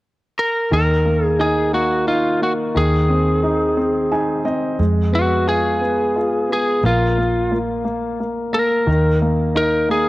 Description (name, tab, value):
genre	pop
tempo	59 BPM (dotted quarters)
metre	6/8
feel	straight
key	unclear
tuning	A4 = 440 Hz
part	lightly driven lead guitar	melody	0.4-10.1 s	F4 to Bb4	-18 LUFS	equal	cassette tape
part	clear grand piano	accompaniment	0.7-10.1 s	Eb3 to Ab5	-20 LUFS	equal	none
part	vintage muted fingered electric bass	bass	0.7-10.1 s	Bb1 to F2	-21 LUFS	equal	none
room	light reverb, small room ambience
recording	home recording on cassette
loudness	-16 LUFS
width	side -18 dB against mid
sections	0.7-10.1 A section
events	grand piano fill 3.8-4.8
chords	0.0 N.C.; 0.7 Eb5; 2.8 Ab/Eb; 4.8 Fdim; 6.8 Bb5; 8.9 Eb5